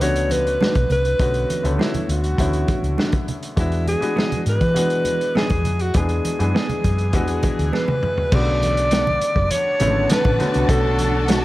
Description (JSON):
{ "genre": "lush 1970s-style soul", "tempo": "101 BPM", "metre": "4/4", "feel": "straight", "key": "unclear", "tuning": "A4 = 443 Hz", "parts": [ { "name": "warm alto saxophone", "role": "melody", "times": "0.0-11.4 s", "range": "E4 to D5", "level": "-22 LUFS", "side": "equal", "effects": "none" }, { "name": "clear grand piano", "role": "accompaniment", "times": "0.0-11.4 s", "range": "C#3 to A4", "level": "-26 LUFS", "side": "left 2 dB", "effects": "none" }, { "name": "hollow-body short-scale fingered electric bass", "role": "bass", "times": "0.0-11.4 s", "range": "F#1 to E3", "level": "-22 LUFS", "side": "equal", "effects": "none" }, { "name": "vintage drum kit", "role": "drums", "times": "0.0-11.4 s", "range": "crash cymbal, hi-hat, kick drum, snare drum, toms", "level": "-22 LUFS", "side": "equal", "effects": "none" }, { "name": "congas", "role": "percussion", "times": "0.0-11.4 s", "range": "none", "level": "-30 LUFS", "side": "right 4 dB", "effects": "none" }, { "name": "mellow electric guitar", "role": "riff", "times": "0.6-11.4 s", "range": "A3 to A4", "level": "-28 LUFS", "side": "right 4 dB", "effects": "analog chorus" }, { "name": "warm studio violin section", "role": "second line", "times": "9.5-11.4 s", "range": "D4 to A5", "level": "-26 LUFS", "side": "left 2 dB", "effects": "none" } ], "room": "light reverb, small room ambience", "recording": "dark, warm production", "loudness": "-17 LUFS", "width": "side -17 dB against mid", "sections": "0.0-8.3 A section; 8.3-11.4 B section", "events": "drum fill 7.7-8.3", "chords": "0.0 Bm7; 3.6 E7; 8.3 Bm7", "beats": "0.01 0.60 | 1.20 1.79 2.39 2.98 | 3.57 4.17 4.76 5.36 | 5.95 6.54 7.13 7.73 | 8.32 8.91 9.51 10.10 | 10.69 11.29" }